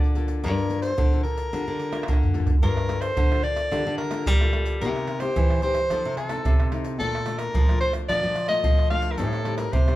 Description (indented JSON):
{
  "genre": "samba and choro",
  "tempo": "110 BPM",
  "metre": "4/4",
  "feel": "straight",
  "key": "G minor",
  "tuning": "A4 = 443 Hz",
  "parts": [
    { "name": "breathy soprano saxophone", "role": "melody", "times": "0.0-10.0 s", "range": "A4 to F5", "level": "-27 LUFS", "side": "equal", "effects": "none" },
    { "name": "nylon-string guitar", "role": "accompaniment", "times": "0.0-10.0 s", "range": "G2 to A4", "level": "-33 LUFS", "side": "left 4 dB", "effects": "none" },
    { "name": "nylon-string guitar", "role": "bass", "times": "0.0-10.0 s", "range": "G2 to G3", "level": "-28 LUFS", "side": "left 2 dB", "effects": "none" },
    { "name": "tube shaker, pandeiro, surdo and tamborim", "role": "percussion", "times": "0.0-10.0 s", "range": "none", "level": "-23 LUFS", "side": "right 1 dB", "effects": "none" }
  ],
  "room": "wet large studio reverb, RT60 1.0 s",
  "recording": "band playing live in one room",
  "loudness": "-21 LUFS",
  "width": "side -16 dB against mid",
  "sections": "0.0-2.6 A section; 2.6-10.0 A section",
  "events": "drum fill 1.9-2.6",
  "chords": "0.0 Gm9; 4.8 Cm7; 5.9 F7; 7.0 Bbmaj7; 9.2 Am7b5"
}